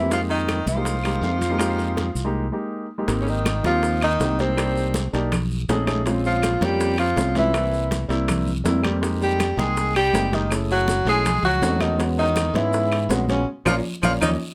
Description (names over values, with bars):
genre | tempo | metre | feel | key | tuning
Afro-Cuban jazz | 162 BPM | 4/4 | straight | F minor, Ab major from 3.1 s | A4 = 441 Hz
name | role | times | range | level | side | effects
warm tenor saxophone | melody | 0.0-14.3 s | C4 to Ab4 | -26 LUFS | equal | none
clear baritone saxophone | second line | 0.0-14.3 s | C3 to Ab3 | -32 LUFS | equal | none
warm grand piano | accompaniment | 0.0-14.3 s | G3 to G5 | -28 LUFS | equal | none
modern bright fingered electric bass | bass | 0.0-14.4 s | Gb1 to G#2 | -28 LUFS | equal | none
bongos | percussion | 0.1-14.3 s | none | -36 LUFS | equal | none
congas | percussion | 0.1-14.3 s | none | -32 LUFS | equal | none
guiro | percussion | 0.1-14.3 s | none | -44 LUFS | equal | none
maracas | percussion | 0.1-14.3 s | none | -41 LUFS | equal | none
timbales | percussion | 0.1-14.3 s | none | -34 LUFS | equal | none
claves | percussion | 0.5-14.3 s | none | -34 LUFS | equal | none
room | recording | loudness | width
light reverb | none | -22 LUFS | mono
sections
0.0-3.1 A section; 3.1-14.5 B section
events
break 2.3-3.1; band accent 13.5-14.5; drum fill 14.2-14.5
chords
0.1 Fm11; 3.1 Abmaj9; 4.6 Cm7; 5.3 B13; 6.1 Bbm9; 7.5 C7; 9.0 Fm11; 10.5 Gbm9; 11.3 B9; 12.0 E6; 13.5 Bbm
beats
| 0.11 0.48 0.85 1.23 | 1.60 1.97 2.34 2.72 | 3.09 3.46 3.83 4.20 | 4.57 4.95 5.32 5.69 | 6.06 6.43 6.80 7.17 | 7.54 7.92 8.29 8.66 | 9.03 9.40 9.77 10.14 | 10.51 10.88 11.25 11.62 | 12.00 12.37 12.74 13.11 | 13.48 13.85 14.22